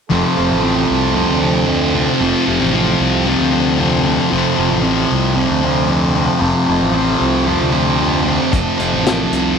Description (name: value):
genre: psychedelic rock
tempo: 114 BPM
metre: 4/4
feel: straight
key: F major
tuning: A4 = 440 Hz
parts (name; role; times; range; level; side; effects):
- pedal harmonium; sustained chords; 0.1-9.6 s; F3 to A4; -23 LUFS; right 8 dB; none
- thick fuzz guitar; riff; 0.1-9.6 s; F2 to F3; -14 LUFS; left 1 dB; distortion, phaser
- fuzz fingered electric bass; bass; 0.1-9.6 s; F1 to D2; -20 LUFS; equal; overdrive
- vintage drum kit; drums; 8.5-9.4 s; hi-hat, kick drum, snare drum; -20 LUFS; left 3 dB; none
room: light reverb, small room ambience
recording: 1960s-style stereo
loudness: -13 LUFS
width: side -6 dB against mid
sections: 0.1-9.6 A section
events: none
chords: 0.1 F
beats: | 0.12 0.65 1.17 1.70 | 2.22 2.74 3.27 3.79 | 4.32 4.84 5.37 5.89 | 6.42 6.95 7.47 8.00 | 8.53 9.05 9.58